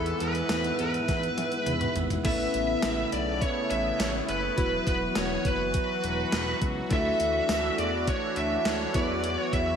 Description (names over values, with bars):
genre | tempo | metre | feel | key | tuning
1980s-style pop | 103 BPM | 4/4 | straight | A major | A4 = 440 Hz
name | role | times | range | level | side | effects
high-gain lead guitar | melody | 0.0-9.8 s | A4 to E5 | -29 LUFS | equal | distortion, analog delay
chorused retro synth keys | accompaniment | 0.0-9.8 s | F#3 to B4 | -33 LUFS | equal | none
sweeping resonant pad | sustained chords | 0.0-9.8 s | G#2 to E5 | -34 LUFS | left 1 dB | chorus
smooth synth bass | bass | 0.0-9.7 s | E1 to E3 | -34 LUFS | equal | none
gated 80s digital drum machine | drums | 0.1-9.7 s | crash cymbal, hi-hat, kick drum, snare drum, tambourine, toms | -31 LUFS | equal | gated reverb, gated reverb snare
room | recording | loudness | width
wet lush hall reverb, RT60 2.2 s | dreamy mix soaked in reverb | -25 LUFS | side -7 dB against mid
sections
0.0-2.2 A section; 2.2-9.8 B section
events
drum fill 1.1-2.2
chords
0.0 E; 2.2 Aadd9; 4.6 Esus2; 6.9 Dadd9; 8.9 Esus2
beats
0.50 1.08 1.67 | 2.25 2.83 3.41 4.00 | 4.58 5.16 5.74 6.33 | 6.91 7.49 8.07 8.65 | 9.24